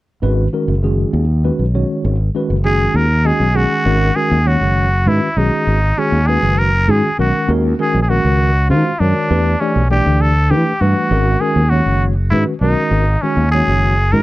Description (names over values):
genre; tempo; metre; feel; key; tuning
jazz; 66 BPM (dotted quarters); 6/8; straight; G# minor; A4 = 440 Hz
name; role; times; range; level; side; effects
tine electric piano; accompaniment; 0.2-14.2 s; D#3 to G#5; -19 LUFS; equal; medium stereo tremolo
fretless electric bass; bass; 0.2-14.2 s; F#1 to E3; -14 LUFS; equal; none
trumpet with straight mute; melody; 2.7-14.2 s; C#4 to A#4; -18 LUFS; equal; none
room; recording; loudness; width
little or no reverb; dry, close 1970s-style studio recording; -12 LUFS; side -18 dB against mid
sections
0.2-3.9 A section; 3.9-14.2 B section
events
tine electric piano fill 3.0-3.9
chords
0.2 G#m7; 3.9 G#m9; 7.5 D#m7; 9.3 Em7; 11.1 G#7sus2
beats
| 0.22 1.13 | 2.04 2.95 | 3.86 4.77 | 5.68 6.58 | 7.49 8.40 | 9.30 10.21 | 11.11 12.02 | 12.92 13.83